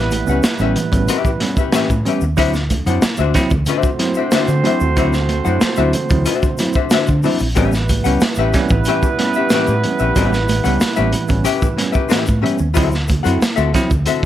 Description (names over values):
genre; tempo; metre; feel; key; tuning
funk; 92 BPM; 4/4; straight; unclear; A4 = 437 Hz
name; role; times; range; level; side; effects
mellow horn section; second line; 0.0-14.3 s; F#3 to C5; -22 LUFS; right 4 dB; none
vintage muted fingered electric bass; bass; 0.0-14.1 s; A1 to D3; -19 LUFS; equal; none
archtop guitar, miked and amplified; accompaniment; 0.1-14.3 s; C4 to F#5; -20 LUFS; left 10 dB; none
bell-like tine electric piano; stabs; 0.1-14.2 s; A2 to E4; -22 LUFS; right 2 dB; fast stereo tremolo
crunchy breakbeat drum kit; drums; 0.1-14.3 s; hi-hat, kick drum, snare drum; -19 LUFS; equal; none
congas; percussion; 0.1-14.2 s; none; -27 LUFS; right 5 dB; none
tube shaker; percussion; 0.1-14.2 s; none; -35 LUFS; left 4 dB; none
room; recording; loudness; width
light reverb; none; -14 LUFS; side -12 dB against mid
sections
0.0-14.3 A section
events
none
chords
0.0 A9; 2.4 D9; 7.6 A9; 12.8 D9